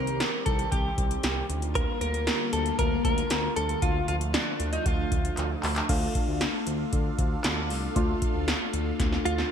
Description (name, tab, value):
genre	synth-pop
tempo	116 BPM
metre	4/4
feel	straight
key	unclear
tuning	A4 = 445 Hz
part	direct-recorded clean electric guitar	melody	0.0-5.6, 9.3-9.5 s	D4 to Bb4	-30 LUFS	equal	analog chorus
part	phased analog pad	sustained chords	0.0-9.5 s	D3 to F5	-33 LUFS	left 1 dB	phaser, chorus
part	smooth gliding synth bass	bass	0.0-9.4 s	C2 to D2	-31 LUFS	equal	none
part	electro analog drum machine	drums	0.1-9.5 s	crash cymbal, handclaps, hi-hat, kick drum, snare drum	-28 LUFS	equal	gated reverb
part	warm analog keys	accompaniment	5.9-9.5 s	A3 to F4	-32 LUFS	left 3 dB	chorus
room	moderate plate reverb, RT60 2.6 s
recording	bright 1980s-style digital production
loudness	-24 LUFS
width	side -8 dB against mid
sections	0.0-5.9 A section; 5.9-9.5 B section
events	drum fill 5.4-5.9, 9.0-9.5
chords	0.0 Cm; 1.5 Bb6/D; 3.8 Dm